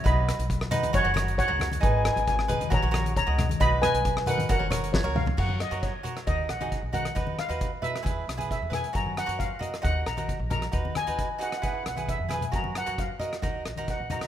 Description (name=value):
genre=calypso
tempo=134 BPM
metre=4/4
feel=straight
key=F# major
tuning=A4 = 440 Hz
part: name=steel pan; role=melody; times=0.0-14.3 s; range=A#4 to B5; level=-29 LUFS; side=equal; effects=none
part: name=cavaquinho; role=accompaniment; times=0.0-14.2 s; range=D#4 to D#5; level=-32 LUFS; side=right 3 dB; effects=none
part: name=upright bass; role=bass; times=0.1-14.3 s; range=F#1 to F#2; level=-30 LUFS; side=equal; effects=none
part: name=loose indie drum kit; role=drums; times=0.1-14.3 s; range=crash cymbal, hi-hat, kick drum, rim click, snare drum, toms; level=-31 LUFS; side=equal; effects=none
part: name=congas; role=percussion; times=0.7-14.2 s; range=none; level=-35 LUFS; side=left 4 dB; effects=none
room=moderate scoring stage reverb, RT60 1.5 s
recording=minimal, uncompressed stereo recording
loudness=-24 LUFS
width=side -11 dB against mid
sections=0.0-5.4 A section; 5.4-14.3 B section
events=drum fill 4.9-5.4, 12.2-12.5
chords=0.1 B; 0.9 F#; 1.8 G#m; 2.7 F#/A#; 3.6 B; 4.5 F#; 6.3 D#m; 7.2 B/D#; 8.1 E; 9.0 F#; 9.8 D#m; 10.7 B/D#; 11.6 E; 12.5 F#; 13.4 D#m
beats=| 0.06 0.50 0.94 1.39 | 1.83 2.27 2.72 3.16 | 3.60 4.05 4.49 4.94 | 5.38 5.83 6.27 6.72 | 7.17 7.61 8.06 8.51 | 8.95 9.40 9.85 10.29 | 10.74 11.19 11.64 12.08 | 12.53 12.98 13.43 13.87